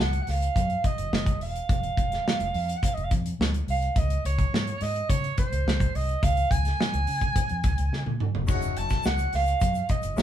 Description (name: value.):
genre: polished 1980s jazz-funk pop.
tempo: 106 BPM.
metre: 4/4.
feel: straight.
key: Db major.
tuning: A4 = 440 Hz.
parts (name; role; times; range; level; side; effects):
mellow soprano saxophone; melody; 0.0-10.2 s; C5 to A5; -29 LUFS; right 3 dB; none.
vintage muted fingered electric bass; bass; 0.0-10.2 s; Fb1 to Db3; -28 LUFS; equal; none.
modern studio drum kit; drums; 0.0-10.2 s; hi-hat, kick drum, snare drum, splash cymbal, toms; -26 LUFS; equal; none.
bright grand piano; accompaniment; 8.5-10.2 s; Ab3 to Db5; -38 LUFS; left 5 dB; none.
tube shaker; percussion; 8.5-10.2 s; none; -46 LUFS; right 6 dB; none.
room: moderate small room reverb, RT60 0.5 s.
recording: band playing live in one room.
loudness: -23 LUFS.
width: side -10 dB against mid.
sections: 0.0-10.2 A section.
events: drum fill 7.9-8.5.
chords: 0.0 Gb5; 1.1 Ebmadd9; 1.7 N.C.; 3.4 Csus24; 4.0 Db5; 8.5 Gbm6.